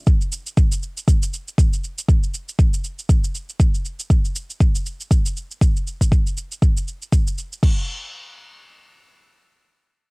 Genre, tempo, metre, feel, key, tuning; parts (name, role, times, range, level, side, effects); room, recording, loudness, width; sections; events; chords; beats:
afro house; 119 BPM; 4/4; swing 57% on 16ths
electronic kick drum; drums; 0.1-7.7 s; -16 LUFS; equal; cassette tape
electronic shaker and crash cymbal; drums; 0.1-7.7 s; -31 LUFS; right 2 dB; cassette tape
little or no reverb; home recording on cassette; -18 LUFS; side -36 dB against mid
0.0-7.6 A section; 7.6-10.1 B section
0.07 0.57 1.07 | 1.58 2.08 2.59 3.09 | 3.60 4.10 4.60 5.11 | 5.61 6.12 6.62 7.12 | 7.63